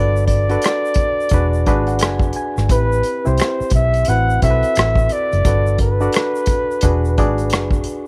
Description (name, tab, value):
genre	R&B, neo-soul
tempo	87 BPM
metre	4/4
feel	swing 60% on 16ths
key	unclear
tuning	A4 = 440 Hz
part	breathy flugelhorn	melody	0.0-7.8 s	B4 to F#5	-22 LUFS	equal	tape echo
part	bright reed electric piano	accompaniment	0.0-8.1 s	C4 to G#5	-25 LUFS	equal	none
part	vintage muted fingered electric bass	bass	0.0-7.8 s	E1 to C2	-20 LUFS	equal	none
part	egg shaker and finger snaps	percussion	0.2-8.1 s	none	-36 LUFS	equal	none
part	unplugged drum kit	drums	0.3-8.0 s	hi-hat, kick drum, rim click	-21 LUFS	equal	none
room	little or no reverb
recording	none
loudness	-17 LUFS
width	mono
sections	0.0-8.1 A section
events	reed electric piano fill 1.3-2.7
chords	0.0 Gmaj7; 1.3 E9; 2.7 Am9; 4.1 D13; 5.5 Gmaj7; 6.8 E9